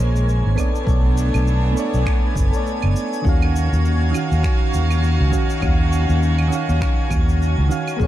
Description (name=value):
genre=sunset chillout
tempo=101 BPM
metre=4/4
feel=swing 57% on 16ths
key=Eb minor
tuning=A4 = 444 Hz
part: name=soft electric-piano-like synth keys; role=accompaniment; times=0.0-8.1 s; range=Eb3 to F5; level=-24 LUFS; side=moving between left 4 dB and right 3 dB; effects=chorus, auto-pan, tape echo
part: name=clear studio string section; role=sustained chords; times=0.0-8.1 s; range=Eb3 to F5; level=-27 LUFS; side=right 2 dB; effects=none
part: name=fretless electric bass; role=bass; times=0.0-8.1 s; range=F#1 to Eb2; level=-17 LUFS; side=equal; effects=ensemble chorus
part: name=drifting glass-harmonics texture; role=texture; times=0.0-8.1 s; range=Ab5 to Ab6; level=-32 LUFS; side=right 4 dB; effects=chorus, built-in reverb
part: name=electronic shaker, claves and finger snaps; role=drums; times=0.2-8.1 s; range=none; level=-34 LUFS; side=right 2 dB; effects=studio reverb
part: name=electronic kick drum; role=drums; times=0.6-8.1 s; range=none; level=-20 LUFS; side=equal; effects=studio reverb
room=little or no reverb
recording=dark, warm production, lossy compression artefacts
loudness=-16 LUFS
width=side -13 dB against mid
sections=0.0-8.1 A section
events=none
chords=0.0 Bbm9; 0.6 Bm9; 3.3 Ebm9